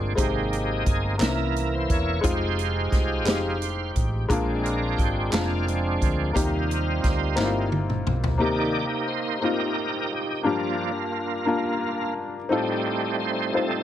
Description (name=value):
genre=slow gospel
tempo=58 BPM (dotted quarters)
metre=6/8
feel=straight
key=unclear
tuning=A4 = 440 Hz
part: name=warm upright piano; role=accompaniment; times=0.0-13.8 s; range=G2 to C5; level=-27 LUFS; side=left 3 dB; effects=none
part: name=bright tonewheel organ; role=sustained chords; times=0.0-13.8 s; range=Eb3 to D5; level=-27 LUFS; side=right 2 dB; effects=slow rotary speaker, overdrive, chorus vibrato
part: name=hollow-body short-scale fingered electric bass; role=bass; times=0.0-8.4 s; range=E1 to Eb2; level=-27 LUFS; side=equal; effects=none
part: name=natural country drum kit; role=drums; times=0.2-8.4 s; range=hi-hat, kick drum, snare drum, toms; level=-26 LUFS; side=equal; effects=none
part: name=group handclap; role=percussion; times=1.2-7.7 s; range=none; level=-33 LUFS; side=right 4 dB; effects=none
room=light reverb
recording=none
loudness=-22 LUFS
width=side -11 dB against mid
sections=0.0-8.4 A section; 8.4-13.8 B section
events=tonewheel organ solo 0.0-8.4, 8.4-13.8; drum fill 7.4-8.4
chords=0.2 Abmaj7; 1.2 C7b9; 2.2 Fm7; 4.3 Bb7; 6.4 Eb6; 8.4 Cm7; 10.5 Gm7; 12.5 F7/A